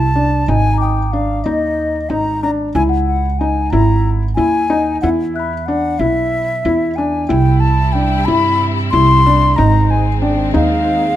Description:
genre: contemporary instrumental, chamber music in an uneven meter.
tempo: 185 BPM (eighths).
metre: 7/8.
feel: straight.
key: unclear.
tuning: A4 = 440 Hz.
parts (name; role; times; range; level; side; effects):
baroque flute; melody; 0.0-11.2 s; D#5 to C6; -18 LUFS; left 2 dB; none.
felt-muted upright piano; arpeggios; 0.0-11.0 s; D4 to E4; -18 LUFS; left 2 dB; none.
upright bass; bass; 0.0-11.2 s; G#1 to G2; -16 LUFS; right 2 dB; none.
celesta; texture; 0.0-7.6 s; F#5 to F#6; -27 LUFS; left 11 dB; none.
warm studio string section; sustained chords; 7.3-11.2 s; C3 to E4; -22 LUFS; left 1 dB; none.
room: light reverb.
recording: close, detailed microphones.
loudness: -12 LUFS.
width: side -12 dB against mid.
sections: 0.0-11.2 A section.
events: none.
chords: 0.5 G#; 2.8 C#m; 5.0 E5; 7.3 C; 9.6 G#.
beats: 0.16 | 0.49 0.81 1.14 1.47 1.79 2.12 2.44 | 2.77 3.09 3.42 3.74 4.07 4.39 4.71 | 5.04 5.36 5.69 6.01 6.34 6.66 6.99 | 7.31 7.63 7.96 8.28 8.61 8.93 9.25 | 9.58 9.90 10.22 10.55 10.87.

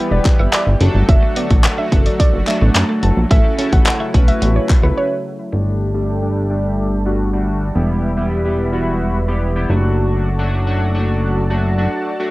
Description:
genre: dance-pop.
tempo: 108 BPM.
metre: 4/4.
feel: straight.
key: D major.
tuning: A4 = 442 Hz.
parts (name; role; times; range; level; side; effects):
chorused polysynth; accompaniment; 0.0-12.3 s; F#3 to B4; -21 LUFS; equal; sidechain pumping, low-pass filter, cassette tape.
lush unison pad; sustained chords; 0.0-12.3 s; C#3 to B5; -26 LUFS; equal; chorus, phaser, sidechain pumping, low-pass filter, cassette tape.
twelve-string electric guitar; riff; 0.0-4.9 s; F#3 to E4; -25 LUFS; right 2 dB; lush chorus, cassette tape.
soft round pluck; melody; 0.1-5.4 s; B4 to A5; -23 LUFS; right 1 dB; chorus, cassette tape.
chorused synth bass; bass; 0.1-11.9 s; E1 to F#2; -16 LUFS; equal; sidechain pumping.
house drum kit; drums; 0.3-4.8 s; handclaps, hi-hat, kick drum; -14 LUFS; equal; none.
group handclap; percussion; 0.3-4.8 s; none; -26 LUFS; left 2 dB; none.
room: little or no reverb.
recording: home recording on cassette.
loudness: -14 LUFS.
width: side -19 dB against mid.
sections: 0.0-5.5 A section; 5.5-12.3 B section.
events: drop 0.0-5.5; break 5.0-5.5; filter sweep 5.5-12.3.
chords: 0.0 Em; 0.8 D/F#; 3.3 A6; 5.5 Gsus2; 7.8 Em; 9.7 D/F#.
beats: 0.53 | 1.09 1.64 2.20 2.75 | 3.31 3.86 4.42 4.97 | 5.53 6.09 6.64 7.20 | 7.75 8.31 8.86 9.42 | 9.97 10.53 11.09 11.64 | 12.20.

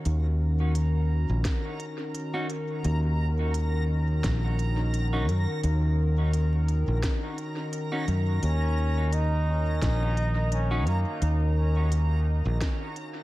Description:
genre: ambient dub.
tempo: 86 BPM.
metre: 4/4.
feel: swing 54% on 16ths.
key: Eb minor.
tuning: A4 = 436 Hz.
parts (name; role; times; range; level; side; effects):
warm analog pad; sustained chords; 0.0-13.2 s; Eb3 to Bb4; -33 LUFS; left 1 dB; chorus.
backwards swelling texture; texture; 0.7-13.2 s; Bb5; -40 LUFS; right 2 dB; built-in reverb.
fingered electric bass; bass; 0.1-12.6 s; Bb1 to Gb2; -24 LUFS; equal; none.
organic electronic drum kit; drums; 0.1-13.1 s; hi-hat, snare drum; -38 LUFS; equal; dub echo.
electronic kick drum; drums; 1.5-12.8 s; none; -29 LUFS; equal; none.
clean electric guitar; stabs; 2.3-10.8 s; Db4 to Gb4; -38 LUFS; equal; dub echo.
clear trombone; melody; 8.4-11.6 s; Bb3 to Eb4; -33 LUFS; right 1 dB; dub echo.
room: digital ambience.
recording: dark, warm production, vinyl crackle.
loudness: -24 LUFS.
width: side -17 dB against mid.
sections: 0.0-13.2 A section.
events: fade-out 12.1-13.2.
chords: 0.0 Ebm7.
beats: | 0.06 0.75 1.45 2.15 | 2.85 3.54 4.24 4.94 | 5.64 6.34 7.03 7.73 | 8.43 9.13 9.82 10.52 | 11.22 11.92 12.62.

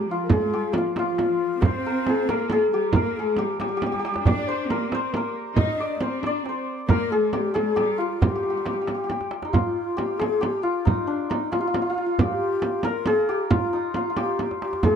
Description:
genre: Persian modal ensemble.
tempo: 91 BPM (dotted quarters).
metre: 6/8.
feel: straight.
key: G dastgah shur.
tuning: A4 = 440 Hz.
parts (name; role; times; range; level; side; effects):
santur; melody; 0.0-15.0 s; D4 to Eb5; -25 LUFS; left 2 dB; none.
breathy mellow ney; second line; 0.0-15.0 s; D4 to Eb5; -28 LUFS; left 2 dB; none.
rich studio cello section; second line; 0.0-9.3, 14.8-15.0 s; F3 to Eb4; -30 LUFS; right 1 dB; none.
frame drum; percussion; 0.3-14.9 s; none; -26 LUFS; right 3 dB; none.
tombak; percussion; 0.3-14.9 s; none; -26 LUFS; right 3 dB; none.
room: moderate small room reverb, RT60 0.5 s.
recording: dark, warm production.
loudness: -21 LUFS.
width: side -7 dB against mid.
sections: 0.0-9.5 A section; 9.5-15.0 B section.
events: drum fill 3.8-4.3, 9.1-9.5, 14.4-14.8.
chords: none.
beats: | 0.30 0.96 | 1.62 2.27 | 2.93 3.59 | 4.25 4.91 | 5.57 6.23 | 6.89 7.55 | 8.22 8.88 | 9.54 10.20 | 10.86 11.53 | 12.19 12.85 | 13.51 14.18 | 14.84.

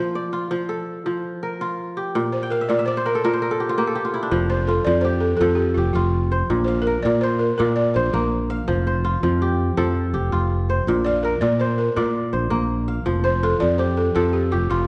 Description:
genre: west african traditional.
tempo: 110 BPM (dotted quarters).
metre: 12/8.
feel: straight.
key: F major.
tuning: A4 = 441 Hz.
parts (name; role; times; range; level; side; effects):
kora; arpeggios; 0.0-14.9 s; Bb2 to G5; -25 LUFS; equal; none.
balafon; melody; 2.3-14.9 s; F4 to D5; -25 LUFS; equal; none.
modern bright fingered electric bass; bass; 4.3-14.9 s; F1 to Bb2; -24 LUFS; equal; none.
room: moderate recital hall reverb, RT60 1.5 s.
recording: recorded in a church or concert hall, nothing above 10.7 kHz.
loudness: -21 LUFS.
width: mono.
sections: 0.0-4.3 A section; 4.3-14.9 A section.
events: kora fill 2.4-4.3.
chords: 0.0 F; 2.1 Bb5; 4.3 F; 6.5 Bb; 8.7 F; 10.9 Bb; 13.1 F.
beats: 0.52 1.06 1.60 | 2.15 2.69 3.23 3.78 | 4.32 4.86 5.41 5.95 | 6.50 7.04 7.59 8.13 | 8.68 9.23 9.78 10.32 | 10.87 11.42 11.97 12.51 | 13.06 13.61 14.16 14.70.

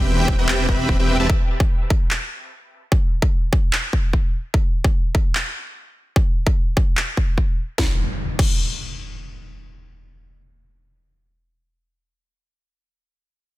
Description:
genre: future bass.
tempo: 148 BPM.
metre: 4/4.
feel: half-time.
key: unclear.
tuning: A4 = 440 Hz.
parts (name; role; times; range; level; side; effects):
dense compressed supersaw; riff; 0.0-1.3 s; C4 to B5; -22 LUFS; equal; sidechain pumping, dub echo.
wide detuned saw bass; bass; 0.0-1.3 s; E1; -22 LUFS; equal; chorus, sidechain pumping.
electronic kick drum; drums; 0.3-8.5 s; none; -18 LUFS; equal; overdrive.
trap drum kit; drums; 0.5-8.5 s; crash cymbal, handclaps, snare drum; -24 LUFS; equal; none.
impact; sound effects; 7.9-11.6 s; none; -30 LUFS; equal; none.
room: digital ambience.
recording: dense, heavily limited modern master.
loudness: -18 LUFS.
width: side -18 dB against mid.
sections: 0.0-7.8 A section; 7.8-11.0 B section.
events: filter sweep on detuned saw bass 0.0-1.3.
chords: 0.0 Cmaj7/E; 1.3 N.C..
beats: 0.08 0.48 0.89 | 1.30 1.70 2.11 2.51 | 2.92 3.32 3.73 4.13 | 4.54 4.95 5.35 5.75 | 6.16 6.57 6.97 7.38 | 7.78 8.19 8.59 9.00 | 9.40 9.81 10.21 10.62.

